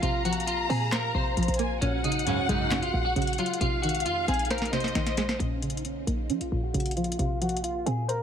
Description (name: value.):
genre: hip hop, trap.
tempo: 134 BPM.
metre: 4/4.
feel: half-time.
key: Bb minor.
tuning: A4 = 440 Hz.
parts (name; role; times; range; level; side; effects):
clean electric guitar; melody; 0.0-8.2 s; Db4 to C5; -31 LUFS; equal; ensemble chorus, low-pass filter, digital delay.
warm studio violin section; second line; 0.0-5.4 s; Eb5 to Bb5; -32 LUFS; left 2 dB; digital delay.
string-like resonator pluck; accompaniment; 0.0-8.2 s; Bb2 to C5; -32 LUFS; right 2 dB; chorus, low-pass filter.
dark French horn section; sustained chords; 0.0-8.2 s; C3 to F5; -40 LUFS; right 1 dB; stereo widening, low-pass filter.
short 808-style bass; bass; 0.0-8.2 s; Bb1 to F3; -31 LUFS; equal; none.
booming analog drum machine; drums; 0.0-8.2 s; handclaps, hi-hat, snare drum; -33 LUFS; left 1 dB; none.
analog synth brass; stabs; 2.3-2.8 s; Gb2 to Db3; -30 LUFS; right 2 dB; chorus.
room: digital ambience.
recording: none.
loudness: -25 LUFS.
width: side -8 dB against mid.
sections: 0.0-5.4 A section; 5.4-8.2 B section.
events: drum fill 4.5-5.4; filter sweep 5.4-8.2.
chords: 0.0 Fsus4/Bb; 1.8 Gbsus2/Bb; 3.6 Ab/Bb; 5.4 Bbm; 7.2 Fsus4/Bb.